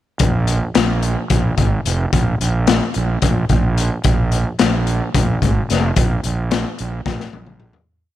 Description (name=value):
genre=psychedelic rock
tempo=219 BPM (eighths)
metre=7/8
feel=straight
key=unclear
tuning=A4 = 440 Hz
part: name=fuzz fingered electric bass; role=bass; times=0.2-7.7 s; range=F1 to Bb1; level=-18 LUFS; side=right 2 dB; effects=overdrive
part: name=raw garage drum kit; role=drums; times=0.2-7.9 s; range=hi-hat, kick drum, snare drum, toms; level=-18 LUFS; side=left 3 dB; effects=none
room=light reverb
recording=1960s-style stereo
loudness=-15 LUFS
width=side -13 dB against mid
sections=0.2-7.9 groove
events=fade-out 6.0-7.9; drum fill 7.1-7.9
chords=none